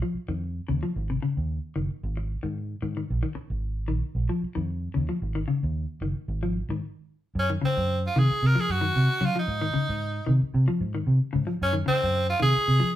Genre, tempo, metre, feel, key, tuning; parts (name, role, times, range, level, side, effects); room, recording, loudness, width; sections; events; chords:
afrobeat; 113 BPM; 4/4; swing 54% on 16ths; A4 = 441 Hz
clean electric guitar; arpeggios; 0.0-12.9 s; C3 to F3; -29 LUFS; left 4 dB
vintage muted fingered electric bass; bass; 0.1-12.9 s; Gb1 to Gb3; -26 LUFS; right 1 dB
raspy tenor saxophone; melody; 7.4-12.9 s; C4 to Bb4; -26 LUFS; right 1 dB
moderate studio reverb, RT60 0.7 s; band playing live in one room; -24 LUFS; side -13 dB against mid
0.0-7.3 A section; 7.3-13.0 B section
stop 6.8-7.3
0.0 N.C.; 0.9 Ab5; 3.1 Bb7(no3); 5.2 Ab5; 7.3 Gb5; 9.5 Ab5; 11.6 Gb(b5, no3)